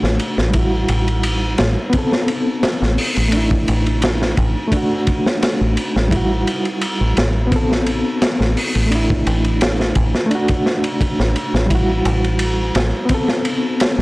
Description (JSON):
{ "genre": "trip hop", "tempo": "86 BPM", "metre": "4/4", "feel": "straight", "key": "A dorian", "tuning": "A4 = 441 Hz", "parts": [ { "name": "overdriven reed electric piano", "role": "accompaniment", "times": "0.0-14.0 s", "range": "G3 to A4", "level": "-20 LUFS", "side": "equal", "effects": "fast tremolo, low-pass filter, tape echo" }, { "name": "deep dub fingered electric bass", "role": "bass", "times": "0.0-14.0 s", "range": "A1", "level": "-18 LUFS", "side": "equal", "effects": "tube saturation" }, { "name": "crunchy breakbeat drum kit", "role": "drums", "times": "0.0-14.0 s", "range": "hi-hat, kick drum, ride cymbal, snare drum", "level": "-19 LUFS", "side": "equal", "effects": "none" } ], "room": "light reverb", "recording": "blown-out, overdriven recording, vinyl crackle, overdrive", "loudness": "-15 LUFS", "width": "side -21 dB against mid", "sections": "0.0-14.0 A section", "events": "filter sweep on reed electric piano 0.0-14.0", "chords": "0.0 D/A; 0.5 Emadd9/A; 1.9 Amadd9; 3.3 Asus4; 4.7 D/A; 6.1 Emadd9/A; 7.5 Amadd9; 8.9 Asus4; 10.3 D/A; 11.7 Emadd9/A; 13.1 Amadd9", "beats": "0.54 1.24 | 1.94 2.63 3.33 4.03 | 4.73 5.42 6.12 6.82 | 7.52 8.21 8.91 9.61 | 10.31 11.01 11.70 12.40 | 13.10 13.80" }